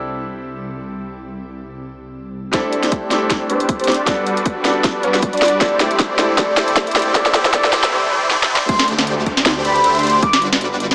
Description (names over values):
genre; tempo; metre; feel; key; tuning
future bass; 156 BPM; 4/4; swing 56% on 16ths, half-time; C lydian; A4 = 439 Hz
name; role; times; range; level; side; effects
bright grand piano; accompaniment; 0.0-8.7 s; G3 to A4; -24 LUFS; equal; sidechain pumping
wide detuned saw bass; bass; 0.0-2.5, 8.7-10.9 s; G1 to D2; -26 LUFS; equal; chorus, sidechain pumping
warm velvety synth lead; melody; 2.5-10.4 s; B4 to D6; -20 LUFS; equal; chorus, sidechain pumping, tape echo
supersaw chords; riff; 2.5-10.9 s; G3 to E5; -19 LUFS; equal; sidechain pumping, low-pass filter
electronic kick drum; drums; 2.5-10.3 s; none; -20 LUFS; equal; overdrive
trap drum kit; drums; 2.5-10.9 s; crash cymbal, hi-hat, snare drum; -17 LUFS; equal; overdrive
riser, noise sweep and downlifter; sound effects; 4.8-10.9 s; none; -30 LUFS; equal; none
room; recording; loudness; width
moderate shimmer reverb, RT60 7.5 s; high-pass filter, small speaker sound; -13 LUFS; side -29 dB against mid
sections
0.0-2.5 A section; 2.5-8.7 B section; 8.7-10.9 C section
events
build-up 2.5-8.7; drum fill 2.5-7.9, 8.3-8.7; filter sweep on supersaw synth 2.5-8.7; filter sweep on soft synth lead 2.5-8.7; noise sweep 7.2-8.7; drop 8.7-10.9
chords
0.0 C69; 2.5 D7sus4; 4.1 Gmaj7; 5.6 C69; 8.7 D7sus4; 10.2 Gmaj7